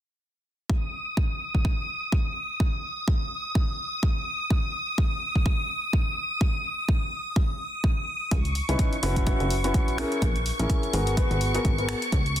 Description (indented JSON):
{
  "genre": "piano house",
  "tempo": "126 BPM",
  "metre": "4/4",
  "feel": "swing 57% on 16ths",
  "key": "G# minor",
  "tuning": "A4 = 442 Hz",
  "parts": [
    { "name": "string machine, violins", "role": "sustained chords", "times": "0.7-12.4 s", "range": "C#6 to D#6", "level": "-31 LUFS", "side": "equal", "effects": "ensemble chorus, sidechain pumping" },
    { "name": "electronic kick drum", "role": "drums", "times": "0.7-12.2 s", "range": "none", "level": "-24 LUFS", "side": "equal", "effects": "none" },
    { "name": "plucky analog bass", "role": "bass", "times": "8.3-12.4 s", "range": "F#1 to C#2", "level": "-27 LUFS", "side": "equal", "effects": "tube saturation, sidechain pumping" },
    { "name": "punchy analog drum machine", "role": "drums", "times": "8.3-12.4 s", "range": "finger snaps, hi-hat", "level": "-35 LUFS", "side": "left 1 dB", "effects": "soft clipping on snare" },
    { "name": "clear concert grand piano", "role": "riff", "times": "8.7-11.9 s", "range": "B3 to B4", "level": "-28 LUFS", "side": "left 1 dB", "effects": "sidechain pumping, tape echo" }
  ],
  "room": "little or no reverb",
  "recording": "dense, heavily limited modern master",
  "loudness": "-23 LUFS",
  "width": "side -12 dB against mid",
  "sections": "0.7-12.4 A section",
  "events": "none",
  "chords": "0.7 N.C.; 8.3 C#m9; 9.0 F#7sus4; 10.0 A#m7b5; 10.9 G#m9"
}